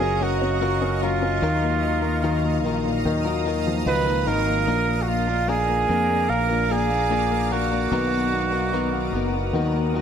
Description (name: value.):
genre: pop.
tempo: 74 BPM.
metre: 4/4.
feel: straight.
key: Eb minor.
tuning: A4 = 440 Hz.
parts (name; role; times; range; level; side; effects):
clear flugelhorn; melody; 0.0-9.9 s; F4 to Cb5; -25 LUFS; right 5 dB; none.
warm baby grand piano; accompaniment; 0.0-10.0 s; Bb2 to F5; -26 LUFS; left 4 dB; none.
shimmering ambient pad; sustained chords; 0.0-10.0 s; B3 to Eb6; -31 LUFS; right 1 dB; chorus, built-in reverb, phaser.
direct-recorded clean electric guitar; arpeggios; 0.0-10.0 s; B2 to Bb4; -28 LUFS; left 6 dB; none.
fingered electric bass; bass; 0.0-10.0 s; Gb1 to F2; -26 LUFS; right 1 dB; none.
room: light reverb, small room ambience.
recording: none.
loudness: -20 LUFS.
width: side -8 dB against mid.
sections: 0.0-10.0 A section.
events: none.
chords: 0.0 Gbmaj7; 1.4 Ebmadd9; 4.7 Bb; 7.9 Bmaj7.